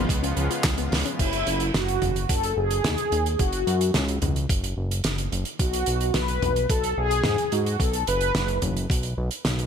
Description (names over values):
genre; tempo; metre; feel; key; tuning
synthwave; 109 BPM; 4/4; straight; F# dorian; A4 = 440 Hz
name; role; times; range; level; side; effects
lush unison pad; sustained chords; 0.0-1.2 s; C#3 to E#4; -31 LUFS; equal; chorus, sidechain pumping
soft round pluck; arpeggios; 0.0-1.1 s; E#3 to E#4; -32 LUFS; left 7 dB; chorus, vintage 12-bit sampler grit, ping-pong delay
fat analog bass; bass; 0.0-9.7 s; F#1 to G#2; -26 LUFS; equal; sidechain pumping
electronic kick drum; drums; 0.1-9.0 s; none; -24 LUFS; equal; none
loose indie drum kit; drums; 0.1-9.7 s; crash cymbal, handclaps, hi-hat, snare drum, toms; -28 LUFS; right 1 dB; none
mellow synth brass; melody; 1.2-8.6 s; E4 to B4; -26 LUFS; left 1 dB; chorus
room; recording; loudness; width
light reverb, studio reverb; none; -22 LUFS; side -7 dB against mid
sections
0.0-1.2 A section; 1.2-9.7 B section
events
drum fill 0.9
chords
0.0 C#7; 1.2 F#5; 5.6 B5